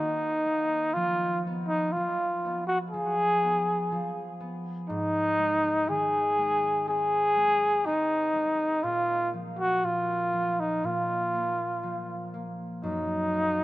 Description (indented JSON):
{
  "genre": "children's music, lullaby",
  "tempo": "61 BPM",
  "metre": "4/4",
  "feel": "straight",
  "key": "unclear",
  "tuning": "A4 = 440 Hz",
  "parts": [
    { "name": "breathy trumpet", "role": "melody", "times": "0.0-13.6 s", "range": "Eb4 to Ab4", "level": "-25 LUFS", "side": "equal", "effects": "tape echo" },
    { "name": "concert harp", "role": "accompaniment", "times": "0.0-13.6 s", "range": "Gb2 to C4", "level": "-35 LUFS", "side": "equal", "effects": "none" }
  ],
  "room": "light reverb",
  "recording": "rough home demo mix",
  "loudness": "-25 LUFS",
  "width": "side -16 dB against mid",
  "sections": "0.0-13.6 A section",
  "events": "none",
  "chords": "0.0 Eb5; 1.0 Fdim; 4.9 Ab; 8.8 Bb5; 12.8 Gb"
}